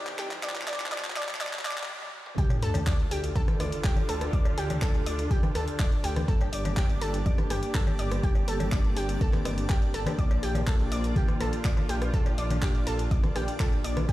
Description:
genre	progressive house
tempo	123 BPM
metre	4/4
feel	straight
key	unclear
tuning	A4 = 440 Hz
part	muted studio string section	sustained chords	0.0-14.1 s	C3 to A4	-37 LUFS	equal	sidechain pumping
part	dark detuned saw bass	bass	0.0-14.1 s	D1 to Bb2	-31 LUFS	equal	sidechain pumping
part	riser and sub drop	sound effects	0.0-4.3 s	none	-36 LUFS	equal	none
part	deep house drum kit	drums	0.1-14.1 s	handclaps, hi-hat, rim click, toms	-36 LUFS	equal	overdrive, high-pass filter on snare, high-pass filter on hats, high-pass filter on toms, high-pass filter on room
part	analog pluck	arpeggios	0.2-14.1 s	G4 to D6	-35 LUFS	equal	chorus, cassette tape, sidechain pumping, tape echo
part	electronic kick drum	drums	2.4-14.1 s	none	-26 LUFS	equal	overdrive
part	backwards swelling texture	texture	3.7-14.1 s	D4 to D5	-41 LUFS	left 1 dB	built-in reverb, sidechain pumping
part	cowbell and congas	percussion	2.5-14.1 s	none	-35 LUFS	left 2 dB	sidechain pumping on perc
room	digital ambience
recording	played on a big sound system in a bare room, stone room reverb, high-pass filter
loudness	-25 LUFS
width	side -16 dB against mid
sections	0.0-2.4 A section; 2.4-14.1 B section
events	build-up 0.0-2.4; drum fill 0.0-1.9, 1.9-2.4; riser 0.0-1.9; stop 1.9-2.4; drop 2.4-14.1; impact 2.4-4.3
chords	0.0 Cm; 2.4 Dm; 6.3 Gm; 10.2 Bb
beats	| 0.43 0.92 1.41 1.89 | 2.38 2.87 3.36 3.84 | 4.33 4.82 5.31 5.79 | 6.28 6.77 7.26 7.75 | 8.23 8.72 9.21 9.70 | 10.19 10.67 11.16 11.65 | 12.14 12.62 13.11 13.60 | 14.09

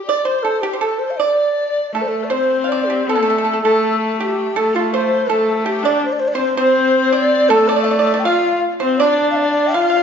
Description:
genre	chinese traditional, Chinese chamber ensemble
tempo	80 BPM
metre	2/4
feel	rubato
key	D yu mode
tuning	A4 = 440 Hz
part	breathy xiao	melody	0.0-10.0 s	F4 to F5	-19 LUFS	equal	none
part	mellow hollow large dizi	second line	0.0-10.0 s	F4 to G5	-21 LUFS	left 2 dB	none
part	pipa	second line	0.0-10.0 s	F4 to F5	-21 LUFS	right 6 dB	none
part	bright horsehead fiddle	second line	1.9-10.0 s	A3 to F4	-19 LUFS	left 2 dB	none
room	moderate scoring stage reverb, RT60 1.8 s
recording	recorded in a church or concert hall, nothing above 7.5 kHz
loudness	-14 LUFS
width	side -7 dB against mid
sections	0.0-3.1 A section; 3.1-10.0 B section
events	none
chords	none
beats	| 0.08 0.82 | 1.57 2.32 | 3.07 3.82 | 4.57 5.30 | 6.02 6.76 | 7.50 8.24 | 8.99 9.74

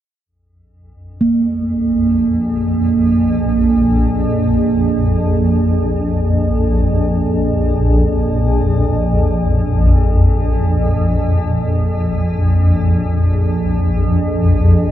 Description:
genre	world meditative, free-time meditation music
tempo	free time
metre	none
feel	none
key	unclear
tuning	A4 = 440 Hz
part	granular cloud pad	drone	1.2-14.9 s	Bb1 to F2	-14 LUFS	equal	built-in reverb
part	bronze singing bowl	texture	1.2-9.4 s	Bb3	-19 LUFS	right 3 dB	none
room	wet huge ambient reverb, RT60 8.4 s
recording	dark, warm production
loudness	-13 LUFS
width	side -12 dB against mid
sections	0.3-14.9 A section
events	none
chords	none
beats	free time

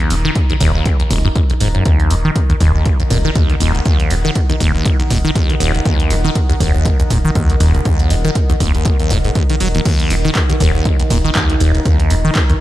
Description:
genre	acid house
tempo	120 BPM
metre	4/4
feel	swing 57% on 16ths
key	Eb minor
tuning	A4 = 442 Hz
part	liquid acid bass	riff	0.0-12.5 s	Eb1 to Gb3	-16 LUFS	equal	phaser, analog delay
part	punchy analog drum machine	drums	0.0-12.6 s	crash cymbal, handclaps, hi-hat	-24 LUFS	right 1 dB	none
part	warbly tape-like pad	texture	0.0-12.6 s	Eb4 to Bb5	-25 LUFS	equal	chorus, built-in reverb, sidechain pumping
part	round analog bass	bass	0.1-12.3 s	Eb1	-19 LUFS	equal	sidechain pumping
part	electronic kick drum	drums	0.4-12.5 s	none	-15 LUFS	equal	none
room	light reverb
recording	none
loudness	-12 LUFS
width	side -15 dB against mid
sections	0.0-12.6 A section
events	fade-in on ambient pad 0.0-12.6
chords	0.0 Eb5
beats	0.35 0.85 1.35 | 1.85 2.35 2.85 3.35 | 3.85 4.36 4.86 5.36 | 5.86 6.36 6.86 7.36 | 7.86 8.36 8.86 9.36 | 9.86 10.36 10.86 11.36 | 11.86 12.36

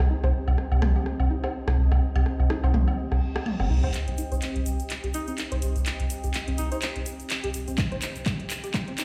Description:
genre	minimal techno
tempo	125 BPM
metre	4/4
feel	swing 56% on 16ths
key	C minor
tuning	A4 = 444 Hz
part	string-like resonator pluck	riff	0.0-9.0 s	C4 to C5	-38 LUFS	equal	chorus, sidechain pumping, tape echo
part	rubbery square bass	bass	0.0-9.0 s	G1 to D2	-25 LUFS	equal	sidechain pumping
part	organic electronic drum kit	percussion	0.0-3.9 s	rim click, toms, woodblock	-34 LUFS	equal	tape echo
part	flickering grainy texture	texture	0.1-4.0 s	C4 to C5	-45 LUFS	equal	none
part	granular cloud pad	texture	0.0-9.0 s	C4 to G5	-39 LUFS	equal	built-in reverb, sidechain pumping
part	reverse cymbal	sound effects	3.2-3.9 s	none	-45 LUFS	equal	none
part	house drum kit	drums	3.9-9.0 s	handclaps, hi-hat	-35 LUFS	equal	overdrive, low-pass filter on hats, low-pass filter on snare, low-pass filter on room
part	egg shaker	percussion	3.9-9.0 s	none	-45 LUFS	equal	none
part	breathy alto saxophone	melody	5.1-6.8 s	Eb4	-39 LUFS	equal	tape echo
part	electronic kick drum	drums	7.8-8.8 s	none	-31 LUFS	equal	overdrive
room	moderate digital room reverb, RT60 1.1 s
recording	played on a big sound system in a bare room, large studio reverb, high-pass filter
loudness	-26 LUFS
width	mono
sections	0.0-3.9 A section; 3.9-9.0 B section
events	reverse cymbal 3.2-3.9; build-up 3.9-9.0; drum fill 3.9-9.0; filter sweep 3.9-9.0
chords	0.0 Cm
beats	| 0.10 0.58 1.06 1.54 | 2.02 2.50 2.98 3.46 | 3.94 4.42 4.90 5.38 | 5.86 6.34 6.82 7.30 | 7.78 8.26 8.74

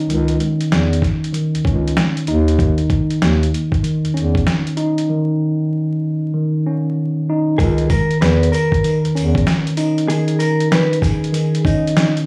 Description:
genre	hip hop, boom-bap hip-hop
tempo	96 BPM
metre	4/4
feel	swing 63% on 16ths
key	C# dorian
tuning	A4 = 440 Hz
part	mellow tine electric piano	accompaniment	0.0-12.3 s	D#3 to D#4	-20 LUFS	equal	cassette tape, high-pass filter, low-pass filter
part	dark bass clarinet	bass	0.1-9.4 s	C#2 to E2	-20 LUFS	equal	none
part	dusty soul sampler-style drum kit	drums	0.1-12.3 s	hi-hat, kick drum, snare drum	-21 LUFS	equal	none
part	mellow electric guitar	melody	7.6-12.1 s	D#4 to B4	-24 LUFS	equal	high-pass filter, low-pass filter, plate reverb, tape echo
part	sleigh bells	percussion	7.6-12.1 s	none	-39 LUFS	equal	none
room	light reverb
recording	vinyl crackle, studio reverb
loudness	-17 LUFS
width	mono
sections	0.0-7.6 A section; 7.6-12.3 B section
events	none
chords	0.0 C#madd9; 2.3 C#sus2/D#; 7.6 C#madd9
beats	| 0.09 0.71 1.34 1.96 | 2.59 3.21 3.84 4.46 | 5.09 5.71 6.34 6.96 | 7.59 8.21 8.84 9.46 | 10.09 10.71 11.34 11.96

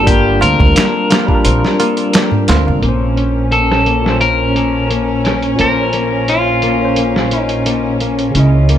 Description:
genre	trip hop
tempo	87 BPM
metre	4/4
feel	straight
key	unclear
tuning	A4 = 439 Hz
part	electric guitar at the edge of break-up	melody	0.0-8.0 s	F4 to Bb4	-17 LUFS	left 2 dB	dub echo
part	barky tine electric piano	accompaniment	0.0-8.8 s	Bb2 to Eb5	-18 LUFS	equal	overdrive, harmonic tremolo, tape echo
part	concert harp	arpeggios	0.0-8.8 s	Bb3 to Db4	-20 LUFS	left 5 dB	vintage 12-bit sampler grit, low-pass filter, ping-pong delay
part	upright bass	bass	0.0-8.8 s	G1 to D2	-17 LUFS	right 1 dB	none
part	boom bap sampler-style drum kit	drums	0.1-8.8 s	hi-hat, kick drum, snare drum	-16 LUFS	right 1 dB	low-pass filter on snare, low-pass filter on hats, low-pass filter on kick, low-pass filter on room
part	tabla	percussion	0.1-2.8 s	none	-22 LUFS	right 4 dB	none
part	dark studio violin section	sustained chords	2.8-8.8 s	Db4	-21 LUFS	right 1 dB	none
room	studio reverb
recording	none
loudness	-11 LUFS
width	side -10 dB against mid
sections	0.0-2.8 A section; 2.8-8.8 B section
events	kick drops out 1.4-2.8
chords	0.0 Gm7; 2.8 Bbmadd9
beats	| 0.07 0.76 1.45 2.14 | 2.83 3.52 4.21 4.90 | 5.58 6.28 6.96 7.65 | 8.34

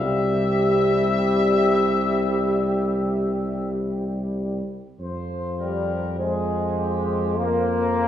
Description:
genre	classical, hymn-like piece for brass band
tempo	free time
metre	none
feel	none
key	F minor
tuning	A4 = 440 Hz
part	warm trumpet section	melody	0.0-8.1 s	F4 to E5	-28 LUFS	left 5 dB	none
part	mellow French horn section	second line	0.0-8.1 s	G4 to C5	-26 LUFS	equal	none
part	bright trombone section	accompaniment	0.0-8.1 s	G3 to Bb3	-26 LUFS	left 1 dB	none
part	warm euphonium	accompaniment	0.0-8.1 s	C3 to F3	-30 LUFS	right 1 dB	none
part	mellow tuba	bass	0.0-8.1 s	C2 to F2	-27 LUFS	equal	none
room	wet recital hall reverb, RT60 1.3 s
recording	recorded in a church or concert hall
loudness	-20 LUFS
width	side -10 dB against mid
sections	0.0-5.0 A section; 5.0-8.1 B section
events	none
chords	0.0 C; 5.0 Fm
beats	free time

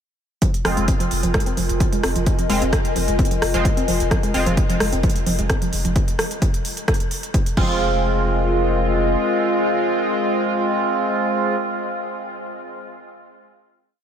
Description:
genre	driving peak-time techno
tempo	130 BPM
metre	4/4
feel	straight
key	F minor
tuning	A4 = 440 Hz
part	woody wave-folded pluck	riff	0.4-8.0 s	F3 to C4	-27 LUFS	right 1 dB	chorus, tube saturation, sidechain pumping, analog delay
part	electronic kick drum	drums	0.4-7.7 s	none	-20 LUFS	equal	none
part	techno drum kit	drums	0.4-7.7 s	crash cymbal, hi-hat, rim click	-26 LUFS	right 1 dB	none
part	warbly tape-like pad	texture	1.0-12.0 s	F4 to Ab5	-26 LUFS	left 4 dB	chorus, built-in reverb, sidechain pumping
part	sync-sweep polysynth	stabs	0.6-4.5, 7.6-11.6 s	Ab3 to F4	-23 LUFS	right 2 dB	chorus, sidechain pumping, analog delay
part	saturated sub bass	bass	0.6-9.1 s	F1	-24 LUFS	equal	overdrive, sidechain pumping, low-pass filter
room	moderate huge ambient reverb, RT60 7.4 s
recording	dreamy mix soaked in reverb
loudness	-17 LUFS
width	side -8 dB against mid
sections	0.4-7.8 drop; 7.8-11.5 final chord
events	drop 0.4-7.8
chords	0.4 Fm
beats	| 0.42 0.88 1.34 1.80 | 2.27 2.73 3.19 3.65 | 4.11 4.57 5.03 5.50 | 5.96 6.42 6.88 7.34 | 7.80 8.27 8.73 9.19 | 9.65 10.11 10.57 11.03

